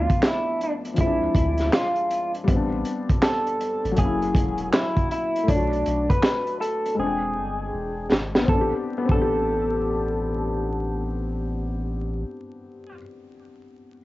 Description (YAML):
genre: lo-fi hip hop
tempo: 80 BPM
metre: 4/4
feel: swing 63% on 16ths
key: A minor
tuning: A4 = 440 Hz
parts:
  - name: electric guitar through a small old amp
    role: melody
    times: 0.0-13.0 s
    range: D4 to B4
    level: -26 LUFS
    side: equal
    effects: lush chorus, low-pass filter, cassette tape, plate reverb
  - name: felt-muted upright piano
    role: accompaniment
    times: 0.0-14.0 s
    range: F3 to G5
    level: -28 LUFS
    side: left 3 dB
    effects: cassette tape, low-pass filter
  - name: soft dub sub bass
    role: bass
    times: 0.0-12.2 s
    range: E1 to D2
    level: -29 LUFS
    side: equal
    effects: none
  - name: crunchy breakbeat drum kit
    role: drums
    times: 0.1-9.3 s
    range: handclaps, hi-hat, kick drum, snare drum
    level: -22 LUFS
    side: equal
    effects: cassette tape
room: light reverb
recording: home recording on cassette, vinyl crackle, nothing above 7.7 kHz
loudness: -21 LUFS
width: side -17 dB against mid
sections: 0.0-8.5 A section; 8.5-11.5 B section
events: drum fill 7.0-8.5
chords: 0.0 Bm7b5; 1.0 Bb9; 2.5 Am11; 4.0 F#7; 5.5 Bm7; 7.0 E7alt; 8.5 Am11